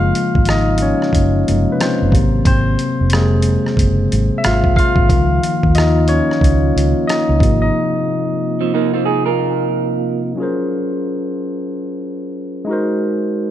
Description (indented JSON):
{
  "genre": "R&B, neo-soul",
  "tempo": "91 BPM",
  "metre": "4/4",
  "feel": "swing 61% on 16ths",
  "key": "Ab mixolydian",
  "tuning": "A4 = 444 Hz",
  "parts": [
    { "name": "barky tine electric piano", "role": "accompaniment", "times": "0.0-13.5 s", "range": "C3 to F5", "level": "-17 LUFS", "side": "left 2 dB", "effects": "overdrive" },
    { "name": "vintage muted fingered electric bass", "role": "bass", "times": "0.0-7.7 s", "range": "F1 to Eb2", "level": "-17 LUFS", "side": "equal", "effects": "none" },
    { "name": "dusty soul sampler-style drum kit", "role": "drums", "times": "0.2-7.6 s", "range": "hi-hat, kick drum, rim click", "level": "-17 LUFS", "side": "equal", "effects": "none" },
    { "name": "percussive tonewheel organ", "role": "sustained chords", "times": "5.1-10.3 s", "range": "C3 to F4", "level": "-24 LUFS", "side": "right 2 dB", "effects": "slow rotary speaker, chorus vibrato" },
    { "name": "electric guitar through a small old amp", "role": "second line", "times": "8.6-10.2 s", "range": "F3 to Bb4", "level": "-18 LUFS", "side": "right 9 dB", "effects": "none" }
  ],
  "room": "moderate concert hall reverb, RT60 2.4 s",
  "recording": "dark, warm production",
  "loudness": "-13 LUFS",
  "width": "side -11 dB against mid",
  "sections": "0.0-10.4 A section; 10.4-13.5 B section",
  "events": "tine electric piano solo 0.0-10.4; break 7.7-10.4",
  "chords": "0.0 Gbmaj9#11; 2.1 Ab7; 5.1 Db69; 7.4 Ab69 (rootless); 10.4 Gbmaj9#11; 12.7 Ab7"
}